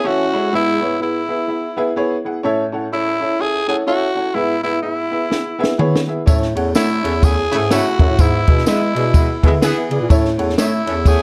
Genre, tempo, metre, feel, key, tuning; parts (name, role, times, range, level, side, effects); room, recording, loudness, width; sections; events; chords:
uptempo 1960s-style soul; 125 BPM; 4/4; swing 60% on 8ths; A major; A4 = 441 Hz
growling tenor saxophone; melody; 0.0-11.2 s; E4 to G#4; -22 LUFS; equal
warm upright piano; accompaniment; 0.0-11.2 s; G#2 to F#5; -23 LUFS; equal
electric guitar through a small old amp; riff; 0.0-0.8 s; E3 to E4; -25 LUFS; equal; harmonic tremolo
compact cocktail drum kit; drums; 5.3-11.2 s; kick drum, ride cymbal, snare drum, toms; -17 LUFS; equal
mellow bass clarinet; bass; 6.3-11.2 s; E2 to A3; -22 LUFS; equal
tambourine; percussion; 6.3-11.2 s; -34 LUFS; equal
clean electric guitar; stabs; 6.8-10.7 s; G#4 to E5; -28 LUFS; equal; lush chorus
clear horn section; second line; 7.0-11.2 s; B2 to C#5; -26 LUFS; equal
light reverb; dark, warm production; -17 LUFS; mono
0.0-11.2 A section
drum fill 5.3-6.3
0.0 A; 0.5 E/G#; 2.4 A; 4.4 E/G#; 6.3 A; 8.2 E/G#; 10.1 A